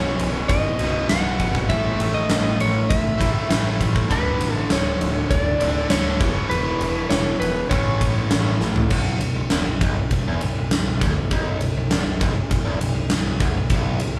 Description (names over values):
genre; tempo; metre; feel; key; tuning
hard rock; 100 BPM; 4/4; straight; unclear; A4 = 440 Hz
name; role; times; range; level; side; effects
lightly driven lead guitar; melody; 0.0-8.6 s; B4 to F#5; -28 LUFS; equal; none
biting overdriven guitar; riff; 0.0-14.2 s; B1 to A3; -27 LUFS; equal; none
growling picked electric bass; bass; 0.0-14.2 s; B0 to A1; -29 LUFS; equal; overdrive
huge arena drum kit; drums; 0.2-14.1 s; crash cymbal, kick drum, ride cymbal, snare drum, toms; -24 LUFS; equal; none
room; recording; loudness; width
moderate large studio reverb, RT60 0.8 s; band playing live in one room; -21 LUFS; mono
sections
0.0-8.9 A section; 8.9-14.2 B section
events
drum fill 8.6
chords
0.0 B; 1.7 A5; 4.1 D5; 6.2 E5; 7.7 A; 8.9 N.C.